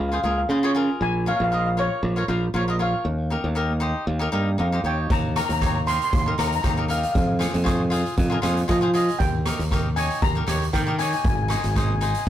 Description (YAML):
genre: calypso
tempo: 117 BPM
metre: 4/4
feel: swing 54% on 16ths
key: unclear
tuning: A4 = 440 Hz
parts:
  - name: steel pan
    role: melody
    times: 0.0-12.3 s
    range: Db5 to C6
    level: -26 LUFS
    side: left 2 dB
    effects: none
  - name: modern bright fingered electric bass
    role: bass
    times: 0.0-12.3 s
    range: Ab1 to F3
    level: -23 LUFS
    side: equal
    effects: none
  - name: cavaquinho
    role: accompaniment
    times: 0.1-12.3 s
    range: Eb4 to Eb5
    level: -28 LUFS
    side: left 1 dB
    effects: none
  - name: congas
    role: percussion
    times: 0.2-12.1 s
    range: none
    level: -38 LUFS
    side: right 3 dB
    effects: none
  - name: street-band drum kit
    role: drums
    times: 5.1-12.3 s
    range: hi-hat, kick drum, rim click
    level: -25 LUFS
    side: right 1 dB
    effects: none
room: moderate small room ambience, RT60 0.5 s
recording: rough rehearsal-room recording, warm saturation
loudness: -20 LUFS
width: side -11 dB against mid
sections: 0.0-12.3 A section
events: none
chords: 0.0 Dbmaj7; 1.0 Bbm; 3.0 Ebadd9; 5.1 Eb; 7.1 Fm7; 9.2 Eb7; 11.2 Ab